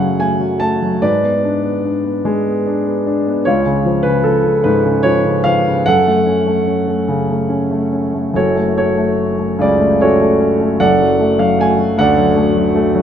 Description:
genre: classical, lyrical solo piano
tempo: 49 BPM (dotted quarters)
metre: 6/8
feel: uneven beats, rubato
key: F# harmonic minor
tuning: A4 = 440 Hz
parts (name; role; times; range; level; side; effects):
- warm concert grand piano; solo; 0.0-13.0 s; F#1 to A5; -12 LUFS; equal; none
room: moderate concert hall reverb, RT60 2.1 s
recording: minimal, uncompressed stereo recording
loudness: -12 LUFS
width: side -9 dB against mid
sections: 0.0-8.3 A section; 8.3-13.0 A section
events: none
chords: 0.0 F#m; 1.0 G#dim; 3.5 C#; 5.9 F#m; 10.8 D/F#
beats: | 1.02 2.26 | 3.46 4.65 | 5.86 7.09 | 8.34 9.59 | 10.81 11.98

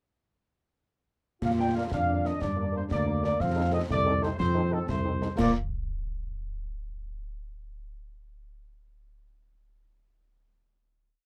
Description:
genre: military-style march for wind band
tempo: 121 BPM (dotted quarters)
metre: 6/8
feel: straight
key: Bb major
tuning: A4 = 439 Hz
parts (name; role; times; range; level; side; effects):
- dark trumpet section; melody; 1.4-5.5 s; A4 to G5; -33 LUFS; equal; none
- warm trombone section; sustained chords; 1.4-5.5 s; F3 to F4; -38 LUFS; equal; none
- dark tuba; bass; 1.4-5.5 s; C2 to Bb2; -31 LUFS; equal; none
- concert snare drum, clash cymbals and concert bass drum; drums; 1.4-5.6 s; none; -37 LUFS; equal; none
- warm French horn section; accompaniment; 1.6-5.5 s; Bb3 to Bb4; -37 LUFS; equal; none
room: moderate booth ambience, RT60 0.2 s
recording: none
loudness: -28 LUFS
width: mono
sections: 1.4-5.4 A section; 5.4-6.4 final chord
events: none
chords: 1.4 Bb; 2.4 Gm; 3.4 F7; 5.4 Bb5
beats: | 1.43 1.92 | 2.42 2.91 | 3.41 3.90 | 4.39 4.89 | 5.38

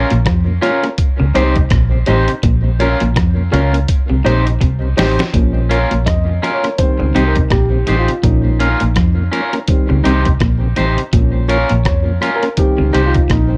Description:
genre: roots reggae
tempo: 83 BPM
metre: 4/4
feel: swing 58% on 16ths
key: Bb dorian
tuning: A4 = 440 Hz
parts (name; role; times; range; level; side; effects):
- electric guitar at the edge of break-up; accompaniment; 0.0-13.2 s; Db4 to C5; -23 LUFS; equal; tape echo, plate reverb
- dark upright piano; stabs; 0.0-13.6 s; Eb3 to Eb5; -22 LUFS; equal; plate reverb
- vintage muted fingered electric bass; bass; 0.0-13.6 s; A1 to F2; -18 LUFS; equal; none
- mellow tonewheel organ; accompaniment; 0.1-13.6 s; Bb2 to Eb4; -26 LUFS; equal; slow rotary speaker, tape echo, plate reverb
- clean electric guitar; riff; 0.1-13.5 s; A2 to F3; -23 LUFS; equal; subtle chorus
- lo-fi sampler-style drum kit; drums; 0.1-13.5 s; hi-hat, kick drum, rim click, snare drum; -19 LUFS; equal; none
room: light reverb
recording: none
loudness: -14 LUFS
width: mono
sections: 0.0-5.3 A section; 5.3-13.6 B section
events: drum fill 3.9-5.3; upright piano solo 5.3-13.6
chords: 0.0 Bbm; 1.0 Cm; 2.4 Bbm; 3.9 Cm; 5.3 Bbm; 6.8 Cm; 8.2 Bbm; 9.7 Cm; 11.1 Bbm; 12.6 Cm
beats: 0.26 0.98 1.71 | 2.44 3.16 3.89 4.61 | 5.34 6.06 6.79 7.51 | 8.24 8.96 9.69 10.41 | 11.13 11.86 12.58 13.30

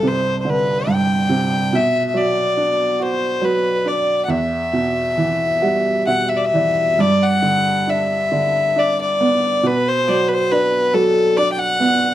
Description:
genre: celtic folk, Celtic slow air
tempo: 69 BPM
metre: 3/4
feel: rubato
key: unclear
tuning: A4 = 440 Hz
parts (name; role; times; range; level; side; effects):
- rich fiddle; melody; 0.0-12.1 s; A4 to G5; -17 LUFS; left 2 dB; slapback echo
- clear upright piano; accompaniment; 0.0-12.1 s; C2 to F#5; -19 LUFS; right 3 dB; none
room: light reverb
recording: dry, close 1970s-style studio recording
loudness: -15 LUFS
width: side -13 dB against mid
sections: 0.0-7.0 A section; 7.0-12.1 B section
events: upright piano fill 5.2-7.0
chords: 0.0 Csus2; 1.7 Bm; 4.3 Em; 7.0 G; 9.6 Bm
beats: 0.03 0.87 | 1.72 2.57 3.43 | 4.30 5.17 6.08 | 6.99 7.89 8.77 | 9.64 10.51 11.36

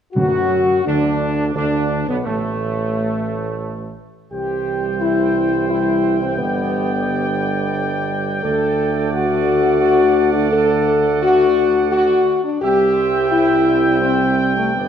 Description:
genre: classical, ceremonial fanfare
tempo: 87 BPM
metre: 3/4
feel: straight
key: D mixolydian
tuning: A4 = 441 Hz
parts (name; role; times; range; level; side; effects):
- warm trumpet section; melody; 0.1-14.9 s; A3 to G5; -23 LUFS; right 1 dB; none
- warm French horn section; sustained chords; 0.1-14.9 s; A3 to A4; -17 LUFS; left 2 dB; none
- clear trombone section; sustained chords; 0.2-14.9 s; A2 to C4; -26 LUFS; right 5 dB; none
- warm tuba; bass; 0.2-14.9 s; G1 to F#2; -23 LUFS; right 4 dB; none
- timpani; percussion; 0.2-1.2 s; D3; -23 LUFS; equal; none
room: wet recital hall reverb, RT60 1.7 s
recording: none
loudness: -15 LUFS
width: side -8 dB against mid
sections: 0.2-14.9 A section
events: none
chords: 0.2 D; 4.3 C; 6.4 G; 8.4 D; 12.6 C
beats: | 0.15 0.86 1.56 | 2.25 2.94 3.63 | 4.33 5.02 5.70 | 6.38 7.07 7.75 | 8.44 9.12 9.80 | 10.52 11.22 11.90 | 12.62 13.31 14.02 | 14.75

